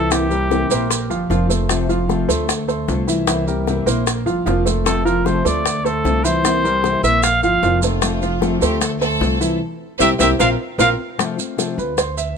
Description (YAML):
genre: latin, Cuban son and guajira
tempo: 152 BPM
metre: 4/4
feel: straight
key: F major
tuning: A4 = 440 Hz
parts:
  - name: warm trumpet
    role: melody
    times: 0.0-1.3, 4.9-10.9 s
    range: G4 to F5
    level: -19 LUFS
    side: equal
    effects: none
  - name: nylon-string guitar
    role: accompaniment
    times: 0.0-12.0 s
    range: C3 to F4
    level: -24 LUFS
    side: left 5 dB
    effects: none
  - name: warm baby grand piano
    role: arpeggios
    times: 0.0-12.4 s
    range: E3 to F5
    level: -20 LUFS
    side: right 1 dB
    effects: none
  - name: upright bass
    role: bass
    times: 0.0-12.3 s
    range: F1 to D2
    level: -23 LUFS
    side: right 1 dB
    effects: none
  - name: bongos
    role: percussion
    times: 0.1-12.2 s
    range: none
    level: -24 LUFS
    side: left 8 dB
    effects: none
  - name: maracas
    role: percussion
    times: 0.1-12.4 s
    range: none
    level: -26 LUFS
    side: right 9 dB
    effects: none
  - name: clear studio violin section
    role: second line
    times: 7.8-10.9 s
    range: C4 to C5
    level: -24 LUFS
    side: right 2 dB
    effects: none
room: light reverb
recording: close, detailed microphones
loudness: -15 LUFS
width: side -6 dB against mid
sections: 0.0-11.2 A section; 11.2-12.4 B section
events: band accent 9.6-11.2; grand piano solo 11.2-12.4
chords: 0.1 C7; 0.9 Bbsus2; 1.7 F; 2.5 Dm7; 3.3 C7; 4.1 Bbsus2; 4.9 F; 5.7 Dm7; 6.4 C7; 7.2 Bbsus2; 8.0 F; 8.8 Dm7; 9.6 C7; 10.4 Bbsus2; 11.2 F